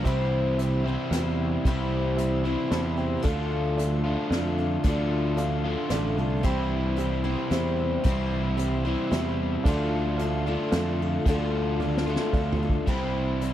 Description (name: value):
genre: folk rock and heartland rock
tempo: 113 BPM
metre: 3/4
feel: straight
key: unclear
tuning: A4 = 439 Hz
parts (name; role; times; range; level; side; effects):
- picked twelve-string acoustic guitar; accompaniment; 0.0-13.5 s; C3 to C5; -31 LUFS; left 5 dB; none
- reed electric piano; accompaniment; 0.0-12.9 s; G4 to A5; -37 LUFS; right 8 dB; fast tremolo
- crunchy overdriven guitar; riff; 0.0-13.5 s; C3 to F4; -29 LUFS; right 1 dB; none
- picked electric bass; bass; 0.0-13.5 s; A1 to F2; -28 LUFS; equal; none
- unplugged drum kit; drums; 0.0-13.5 s; crash cymbal, hi-hat, kick drum, snare drum, toms; -28 LUFS; equal; none
room: small room ambience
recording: none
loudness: -23 LUFS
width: side -12 dB against mid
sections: 0.1-12.9 A section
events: reed electric piano fill 2.5-3.3; drum fill 11.8-12.9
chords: 0.1 C; 3.3 Dm; 6.4 C; 9.6 Dm; 12.9 C